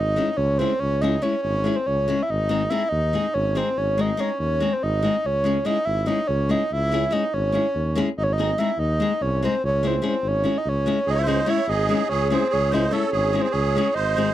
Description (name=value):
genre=balkan folk, Balkan wedding band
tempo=287 BPM (eighths)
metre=7/8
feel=straight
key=C# harmonic minor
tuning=A4 = 440 Hz
part: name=breathy flute-like synth lead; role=melody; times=0.0-14.3 s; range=B#4 to E5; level=-23 LUFS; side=right 1 dB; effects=chorus
part: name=mellow tuba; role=bass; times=0.0-14.3 s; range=G#1 to D#2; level=-25 LUFS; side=equal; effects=none
part: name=flamenco guitar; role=accompaniment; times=0.2-14.3 s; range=G#3 to G#4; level=-24 LUFS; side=left 4 dB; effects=none
part: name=musette accordion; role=second line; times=11.1-14.3 s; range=G#4 to C#5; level=-26 LUFS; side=right 7 dB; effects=none
room=little or no reverb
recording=dry, close 1970s-style studio recording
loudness=-20 LUFS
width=side -13 dB against mid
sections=0.0-11.1 A section; 11.1-14.3 A section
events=speeding up 0.0-14.3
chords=0.0 C#m; 2.3 G#; 5.2 C#m; 8.2 G#; 9.6 C#m